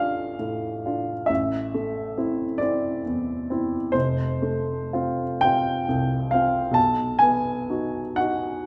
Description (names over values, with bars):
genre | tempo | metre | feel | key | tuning
classical, romantic nocturne for solo piano | 38-46 BPM (dotted quarters) | 12/8 | rubato | A minor | A4 = 439 Hz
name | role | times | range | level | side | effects
warm upright piano | solo | 0.0-8.7 s | F1 to A5 | -24 LUFS | equal | none
room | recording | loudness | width
moderate recital hall reverb, RT60 1.5 s | none | -24 LUFS | mono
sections
0.0-8.7 A section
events
none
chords
0.0 Dm/A; 1.3 Am; 3.9 F; 6.8 B